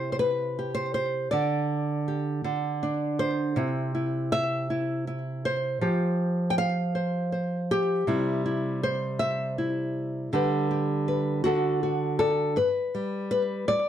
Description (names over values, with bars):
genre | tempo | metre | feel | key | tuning
folk, solo fingerstyle acoustic guitar | 53 BPM (dotted quarters) | 6/8 | straight | G major | A4 = 441 Hz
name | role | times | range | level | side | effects
nylon-string guitar | solo | 0.0-13.9 s | G2 to G5 | -25 LUFS | equal | slapback echo
room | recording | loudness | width
light reverb | dark, warm production | -25 LUFS | side -10 dB against mid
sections
0.0-12.6 A section; 12.6-13.9 B section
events
none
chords
0.0 C; 1.3 Dsus4; 2.4 N.C.; 3.6 C; 5.8 Fsus2; 8.1 C; 10.3 G/D; 11.4 D; 12.6 G